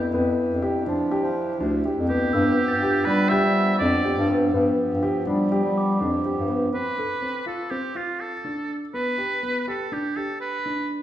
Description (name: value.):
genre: contemporary instrumental, chamber music in an uneven meter.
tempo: 245 BPM (eighths).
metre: 9/8.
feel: straight.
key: unclear.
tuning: A4 = 440 Hz.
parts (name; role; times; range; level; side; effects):
pedal harmonium; sustained chords; 0.0-6.7 s; F3 to G4; -31 LUFS; equal; none.
dark grand piano; arpeggios; 0.0-11.0 s; B3 to A4; -26 LUFS; left 1 dB; none.
breathy bass clarinet; bass; 0.0-6.7 s; D2 to G3; -24 LUFS; left 1 dB; none.
glockenspiel with rubber mallets; texture; 0.0-7.0 s; D6 to A6; -35 LUFS; right 2 dB; none.
clear oboe; melody; 2.1-10.9 s; F4 to E5; -26 LUFS; right 2 dB; none.
room: wet recital hall reverb, RT60 1.4 s.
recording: heard from further back in the room.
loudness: -21 LUFS.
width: side -12 dB against mid.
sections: 0.0-6.7 A section; 6.7-11.0 B section.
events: none.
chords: 0.0 Em7; 2.3 G7; 6.7 F; 8.9 G.